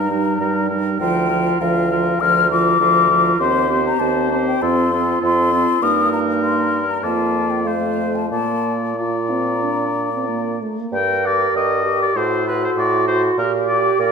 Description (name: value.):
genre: quick classical-period movement for wind quintet.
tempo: 98 BPM.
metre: 4/4.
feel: rubato.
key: Bb major, G minor from 10.9 s.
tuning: A4 = 435 Hz.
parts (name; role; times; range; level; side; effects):
mellow hollow concert flute; melody; 0.0-14.1 s; F5 to F6; -20 LUFS; left 7 dB; none.
warm oboe; second line; 0.0-14.1 s; A4 to G5; -23 LUFS; left 2 dB; none.
clear clarinet; accompaniment; 0.0-14.1 s; Eb4 to Bb4; -23 LUFS; right 6 dB; none.
warm French horn; accompaniment; 0.0-14.1 s; F3 to G4; -23 LUFS; right 1 dB; none.
warm bassoon; bass; 0.0-14.1 s; D2 to Bb2; -23 LUFS; right 3 dB; none.
room: wet scoring stage reverb, RT60 1.9 s.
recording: none.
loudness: -16 LUFS.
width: side -5 dB against mid.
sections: 0.0-10.9 A section; 10.9-14.1 B section.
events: none.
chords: 0.0 Eb/G; 1.0 Bb/D; 3.4 Cm/Eb; 4.6 F; 5.8 Eb/G; 7.0 Bb/F; 7.7 F; 8.3 Bb; 10.9 Gm; 12.2 F#dim/A; 13.4 Gm/Bb.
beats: 0.41 | 1.01 1.61 2.20 2.80 | 3.40 4.00 4.63 5.23 | 5.83 6.43 7.03 7.66 | 8.32 8.98 9.64 10.29 | 10.93 11.55 12.16 12.77 | 13.38 14.00.